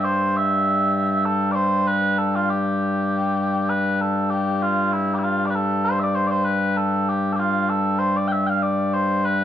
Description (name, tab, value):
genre	celtic folk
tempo	195 BPM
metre	4/4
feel	swing 54% on 8ths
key	G mixolydian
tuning	A4 = 440 Hz
part	mellow small bagpipes	solo	0.0-9.4 s	G2 to G5	-19 LUFS	equal	none
room	moderate large studio reverb, RT60 1.2 s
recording	band playing live in one room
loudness	-19 LUFS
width	side -10 dB against mid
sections	0.0-3.7 A section; 3.7-9.4 B section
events	none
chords	none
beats	| 0.05 0.35 0.66 0.96 | 1.26 1.57 1.88 2.18 | 2.48 2.79 3.10 3.40 | 3.71 4.02 4.32 4.63 | 4.94 5.25 5.56 5.86 | 6.17 6.48 6.79 7.10 | 7.41 7.71 8.02 8.33 | 8.64 8.95 9.25